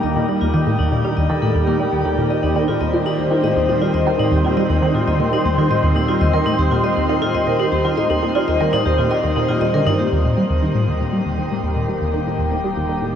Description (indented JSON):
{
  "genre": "ambient, sequencer-driven space music",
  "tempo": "119 BPM",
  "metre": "4/4",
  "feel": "straight",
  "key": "Eb lydian",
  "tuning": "A4 = 439 Hz",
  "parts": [
    { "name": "evolving wavetable pad", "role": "sustained chords", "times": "0.0-13.2 s", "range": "Eb3 to C5", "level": "-20 LUFS", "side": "equal", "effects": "phaser, built-in reverb" },
    { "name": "vibraphone with hard mallets", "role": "arpeggios", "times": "0.0-10.1 s", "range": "Bb3 to Eb5", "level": "-23 LUFS", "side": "left 2 dB", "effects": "auto-pan, tape echo" },
    { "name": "resonant blip pluck", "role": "riff", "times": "0.0-13.1 s", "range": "Eb2 to G3", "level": "-19 LUFS", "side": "equal", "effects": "phaser, analog chorus, tape echo" },
    { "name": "fat analog bass", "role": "bass", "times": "10.1-13.2 s", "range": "Eb1", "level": "-42 LUFS", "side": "equal", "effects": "none" }
  ],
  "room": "wet shimmer reverb, RT60 8.3 s",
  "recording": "worn, warbling old tape, cassette tape, warbly pitch drift",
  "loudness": "-16 LUFS",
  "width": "side -8 dB against mid",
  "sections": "0.0-10.1 A section; 10.1-13.2 B section",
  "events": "fade-in on vibraphone 0.0-10.1",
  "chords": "0.0 Eb"
}